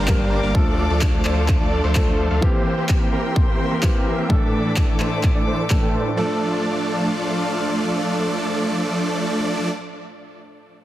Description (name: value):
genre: EDM, festival progressive house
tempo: 128 BPM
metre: 4/4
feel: straight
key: D minor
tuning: A4 = 440 Hz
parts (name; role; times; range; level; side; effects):
- warm grand piano; accompaniment; 0.0-10.8 s; G2 to Bb4; -26 LUFS; equal; sidechain pumping, tape echo
- rich chamber string section; sustained chords; 0.0-9.7 s; D4 to D6; -30 LUFS; left 1 dB; sidechain pumping
- supersaw chords; riff; 0.0-9.7 s; E3 to G5; -22 LUFS; right 1 dB; sidechain pumping, low-pass filter, tape echo
- saturated sub bass; bass; 0.0-2.4 s; G1 to D2; -23 LUFS; equal; sidechain pumping
- impact; sound effects; 0.0-0.5 s; none; barely audible; none; none
- electronic handclaps; drums; 0.1-5.8 s; none; -28 LUFS; left 1 dB; none
- electronic kick drum; drums; 0.1-5.8 s; none; -19 LUFS; equal; none
room: light reverb, digital ambience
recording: heavily compressed radio sound, multiband compression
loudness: -18 LUFS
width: side -14 dB against mid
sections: 0.0-6.2 A section; 6.2-9.9 B section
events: impact 0.0-0.5; filter sweep on supersaw synth 0.0-6.2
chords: 0.0 Gm; 0.5 Dm; 2.4 C7; 4.3 Asus4; 6.2 Dm